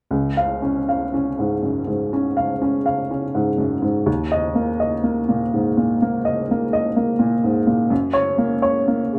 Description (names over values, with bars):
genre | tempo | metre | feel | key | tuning
neoclassical minimalist piano | 62 BPM | 4/4 | rubato | Db major | A4 = 440 Hz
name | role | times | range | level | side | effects
warm upright piano | solo | 0.1-9.2 s | Db2 to F5 | -20 LUFS | equal | none
room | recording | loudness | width
moderate small room reverb, RT60 0.6 s | none | -20 LUFS | mono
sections
0.1-9.2 A section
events
none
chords
0.1 Db; 4.1 Eb5; 7.9 Gb